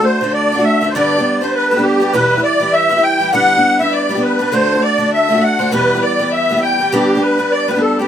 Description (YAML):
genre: celtic folk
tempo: 201 BPM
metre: 4/4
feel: swing 57% on 8ths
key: unclear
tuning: A4 = 439 Hz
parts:
  - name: musette accordion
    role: melody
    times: 0.0-8.1 s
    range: G4 to G5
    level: -14 LUFS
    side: right 1 dB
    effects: none
  - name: clear fiddle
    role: second line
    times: 0.0-8.1 s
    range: G4 to G5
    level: -21 LUFS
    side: left 11 dB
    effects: none
  - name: picked steel-string acoustic guitar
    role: accompaniment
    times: 0.0-8.1 s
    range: E2 to G4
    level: -17 LUFS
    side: equal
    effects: none
room: light reverb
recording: minimal, uncompressed stereo recording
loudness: -12 LUFS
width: side -9 dB against mid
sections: 0.0-8.1 A section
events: none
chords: 0.0 D; 0.9 G; 2.1 Em; 3.3 G; 4.5 D; 5.7 Em; 6.9 G